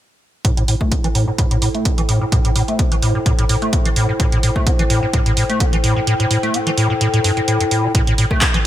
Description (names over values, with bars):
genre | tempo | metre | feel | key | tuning
acid house | 128 BPM | 4/4 | swing 54% on 16ths | A minor | A4 = 439 Hz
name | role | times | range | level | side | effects
acid bass, square | riff | 0.4-8.6 s | G2 to C4 | -18 LUFS | equal | overdrive, lush chorus, sidechain pumping, ping-pong delay
electronic kick drum | drums | 0.4-8.5 s | none | -17 LUFS | equal | none
punchy analog drum machine | drums | 0.4-8.6 s | handclaps, hi-hat, rim click | -22 LUFS | right 3 dB | gated reverb
warbly tape-like pad | texture | 0.8-8.7 s | E4 to G5 | -23 LUFS | left 2 dB | chorus, built-in reverb, sidechain pumping
room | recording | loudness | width
light reverb, digital ambience | bright 1980s-style digital production | -14 LUFS | side -12 dB against mid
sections
0.4-7.9 A section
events
filter sweep on acid bass 0.4-7.9; kick drops out 6.1-7.9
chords
0.4 Am7